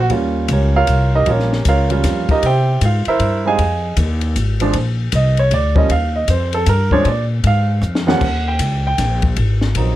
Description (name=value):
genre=jazz piano trio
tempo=155 BPM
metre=3/4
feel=swing 64% on 8ths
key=Eb mixolydian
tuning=A4 = 440 Hz
part: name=warm grand piano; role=melody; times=0.0-10.0 s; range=Eb2 to Ab5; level=-18 LUFS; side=right 3 dB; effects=none
part: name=upright bass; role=bass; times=0.0-10.0 s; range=Ab1 to C3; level=-16 LUFS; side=equal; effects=none
part: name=compact cocktail drum kit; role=drums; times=0.1-9.9 s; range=crash cymbal, hi-hat, kick drum, ride cymbal, snare drum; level=-23 LUFS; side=left 3 dB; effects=none
room=little or no reverb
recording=close, detailed microphones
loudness=-14 LUFS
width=side -14 dB against mid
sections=0.0-8.2 A section; 8.2-10.0 A section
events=grand piano solo 0.0-10.0; drum fill 7.8-8.2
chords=0.1 Eb9; 2.4 C7; 3.6 Fm7; 4.7 Bbadd9; 5.9 Ebadd9; 7.1 Bb5; 8.2 Eb7; 9.4 Ab9